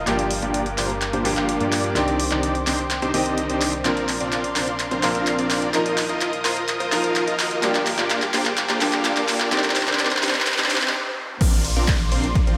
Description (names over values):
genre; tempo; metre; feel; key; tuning
EDM, festival progressive house; 127 BPM; 4/4; straight; C minor; A4 = 440 Hz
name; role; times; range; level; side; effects
bright grand piano; accompaniment; 0.0-11.4 s; G2 to Bb4; -28 LUFS; equal; sidechain pumping, digital delay
lush unison pad; sustained chords; 0.0-12.6 s; Bb4 to Eb6; -32 LUFS; equal; chorus, phaser, sidechain pumping
dense compressed supersaw; riff; 0.0-12.6 s; Bb3 to F5; -27 LUFS; equal; vintage 12-bit sampler grit, sidechain pumping, low-pass filter, digital delay
detuned saw bass; bass; 0.0-12.6 s; Eb1 to G2; -33 LUFS; equal; sidechain pumping
riser, noise sweep and downlifter; sound effects; 2.6-12.6 s; none; -35 LUFS; equal; none
big-room dance drum kit; drums; 0.1-12.6 s; crash cymbal, handclaps, hi-hat; -27 LUFS; equal; high-pass filter on snare, high-pass filter on hats, high-pass filter on cymbals
electronic kick drum; drums; 11.4-12.4 s; none; -22 LUFS; equal; overdrive
room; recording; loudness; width
wet lush hall reverb, RT60 2.2 s; high-pass filter; -21 LUFS; mono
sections
0.0-11.4 A section; 11.4-12.6 B section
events
build-up 0.0-11.4; drum fill 0.0-10.9; filter sweep on supersaw synth 0.0-11.4; filter sweep 0.0-11.4; noise sweep 9.5-11.4; stop 10.9-11.4; drop 11.4-12.6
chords
0.1 Gm7; 2.0 Cmadd9; 3.9 Bbadd9; 5.7 Ebsus2; 7.6 Gm7; 9.5 Cmadd9; 11.4 Bbadd9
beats
| 0.07 0.54 1.02 1.49 | 1.96 2.43 2.90 3.38 | 3.85 4.32 4.79 5.27 | 5.74 6.21 6.68 7.16 | 7.63 8.10 8.57 9.05 | 9.52 9.99 10.46 10.94 | 11.41 11.88 12.35